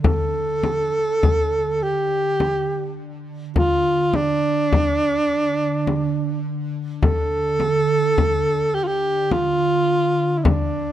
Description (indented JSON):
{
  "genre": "caucasian folk, Caucasian lament",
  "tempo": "52 BPM",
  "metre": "3/4",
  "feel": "rubato",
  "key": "D minor",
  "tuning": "A4 = 442 Hz",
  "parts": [
    { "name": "mellow alto saxophone", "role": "melody", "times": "0.0-10.9 s", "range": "D4 to A4", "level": "-20 LUFS", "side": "right 1 dB", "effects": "none" },
    { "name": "glassy FM pad", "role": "drone", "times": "0.0-10.9 s", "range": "D3", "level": "-26 LUFS", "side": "right 3 dB", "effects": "ensemble chorus, built-in reverb" },
    { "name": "frame drum", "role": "percussion", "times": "0.0-10.7 s", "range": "none", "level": "-21 LUFS", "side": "left 2 dB", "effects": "none" }
  ],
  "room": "light reverb",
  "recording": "close, detailed microphones",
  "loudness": "-18 LUFS",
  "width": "side -12 dB against mid",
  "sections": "0.0-10.9 A section",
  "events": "none",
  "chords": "none",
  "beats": "| 0.03 1.23 2.40 | 3.56 4.72 5.88 | 7.03 8.18 9.32 | 10.45"
}